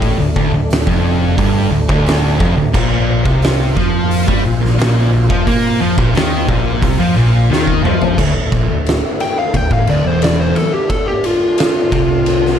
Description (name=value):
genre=stoner and doom metal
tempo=88 BPM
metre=4/4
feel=straight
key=D minor from 8.2 s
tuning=A4 = 440 Hz
part: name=tonewheel organ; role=sustained chords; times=0.0-12.6 s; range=D3 to C5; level=-25 LUFS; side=right 1 dB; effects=slow rotary speaker, overdrive, chorus vibrato
part: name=high-gain distorted guitar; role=riff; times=0.0-8.2 s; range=D2 to Bb3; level=-22 LUFS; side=equal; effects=distortion
part: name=thick fuzz guitar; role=riff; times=0.0-12.6 s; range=D2 to Bb3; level=-18 LUFS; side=left 7 dB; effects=distortion
part: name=thick fuzz guitar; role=riff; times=0.0-12.6 s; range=D2 to Bb3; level=-19 LUFS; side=right 7 dB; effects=distortion
part: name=overdriven picked electric bass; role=bass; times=0.0-12.6 s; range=D1 to Bb2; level=-19 LUFS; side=equal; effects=none
part: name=oversized low-tuned drum kit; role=drums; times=0.0-12.5 s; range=crash cymbal, hi-hat, kick drum, ride cymbal, snare drum, toms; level=-17 LUFS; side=equal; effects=none
part: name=fuzz lead guitar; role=melody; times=9.2-12.6 s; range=F4 to G5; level=-16 LUFS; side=left 1 dB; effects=distortion, slapback echo
room=moderate large studio reverb, RT60 0.8 s, small room ambience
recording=dark, warm production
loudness=-12 LUFS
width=side -9 dB against mid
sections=0.0-8.2 A section; 8.2-12.6 B section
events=drum fill 7.5-8.2; lead electric guitar solo 8.2-12.6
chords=0.0 Dm; 2.7 Bb5; 8.2 Dm